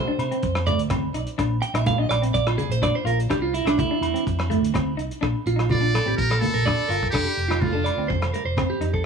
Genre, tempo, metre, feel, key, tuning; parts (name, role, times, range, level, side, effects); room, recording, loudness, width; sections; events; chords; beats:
highlife guitar band; 125 BPM; 4/4; straight; Bb major; A4 = 440 Hz
clean electric guitar; arpeggios; 0.0-9.0 s; D4 to G5; -26 LUFS; right 6 dB; tape echo
fingered electric bass; bass; 0.0-9.0 s; F1 to C3; -26 LUFS; equal
electric guitar at the edge of break-up; accompaniment; 0.1-9.0 s; A3 to F4; -28 LUFS; left 2 dB
cloth-damped thuddy drum kit; drums; 0.2-9.0 s; hi-hat, kick drum, rim click; -29 LUFS; equal
agogo bells; percussion; 0.2-8.7 s; -35 LUFS; left 1 dB
congas; percussion; 0.2-8.7 s; -30 LUFS; right 1 dB
trumpet with metal mute; melody; 5.7-8.1 s; F4 to D5; -26 LUFS; equal
light reverb; -20 LUFS; side -6 dB against mid
0.0-5.2 A section; 5.2-9.1 B section
clean electric guitar solo 0.0-5.2
0.4 F; 1.4 Bbadd9; 2.3 Bb; 3.3 C; 4.3 F; 5.2 Bbmaj7; 7.1 Fadd9
0.43 0.91 | 1.39 1.87 2.35 2.83 | 3.31 3.78 4.26 4.74 | 5.22 5.70 6.18 6.66 | 7.14 7.62 8.10 8.58